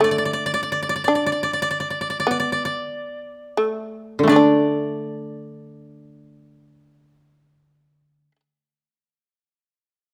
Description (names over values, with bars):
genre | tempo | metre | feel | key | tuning
japanese traditional, Japanese chamber music | 42-57 BPM | 4/4 | rubato | unclear | A4 = 440 Hz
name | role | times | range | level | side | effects
koto | melody | 0.0-8.3 s | D5 | -26 LUFS | equal | none
shamisen | second line | 0.0-8.4 s | D3 to D4 | -23 LUFS | equal | none
koto | accompaniment | 0.0-8.4 s | D3 to D4 | -23 LUFS | equal | none
room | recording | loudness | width
light reverb | close, detailed microphones | -21 LUFS | mono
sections
0.0-4.3 A section; 4.3-9.8 B section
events
slowing down 0.0-4.3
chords
none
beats
0.53 1.66 2.91 | 4.28 5.68 7.05